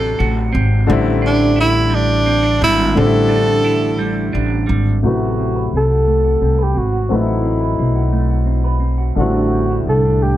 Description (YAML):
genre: slow six-eight R&B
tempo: 58 BPM (dotted quarters)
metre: 6/8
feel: straight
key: A dorian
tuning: A4 = 441 Hz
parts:
  - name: breathy tenor saxophone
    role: melody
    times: 0.0-10.4 s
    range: D4 to A4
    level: -18 LUFS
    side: right 1 dB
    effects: slapback echo, plate reverb
  - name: semi-hollow electric guitar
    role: second line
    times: 0.0-10.4 s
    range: A2 to B4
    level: -22 LUFS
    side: right 5 dB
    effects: spring reverb, plate reverb
  - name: warm grand piano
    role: accompaniment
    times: 0.0-10.4 s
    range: C3 to B4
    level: -21 LUFS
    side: left 4 dB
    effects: plate reverb
  - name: upright bass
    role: bass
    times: 0.0-10.4 s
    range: G#1 to C2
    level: -17 LUFS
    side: equal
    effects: none
room: light reverb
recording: low-pass filter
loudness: -13 LUFS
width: side -13 dB against mid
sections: 0.0-5.0 A section; 5.0-10.4 B section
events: filter sweep 5.0-10.4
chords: 0.0 Am69; 0.9 C69; 5.0 Am69; 9.2 C69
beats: | 0.89 1.92 | 2.96 3.99 | 5.03 6.06 | 7.10 8.13 | 9.16 10.20